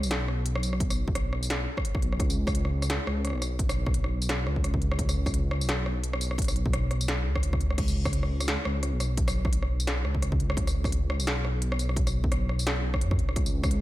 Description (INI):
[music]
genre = half-time drum and bass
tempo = 172 BPM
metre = 4/4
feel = swing 57% on 16ths, half-time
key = unclear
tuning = A4 = 440 Hz
[part]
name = dark detuned saw bass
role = bass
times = 0.0-13.8 s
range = B1 to F#2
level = -28 LUFS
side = equal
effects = none
[part]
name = industrial drum kit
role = drums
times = 0.0-13.8 s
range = crash cymbal, hi-hat, rim click, snare drum, tambourine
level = -32 LUFS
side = equal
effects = none
[part]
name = electronic kick drum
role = drums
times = 0.8-13.7 s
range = none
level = -28 LUFS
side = equal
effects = none
[sound]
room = little or no reverb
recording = none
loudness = -25 LUFS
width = side -16 dB against mid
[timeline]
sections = 0.0-13.8 A section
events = none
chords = none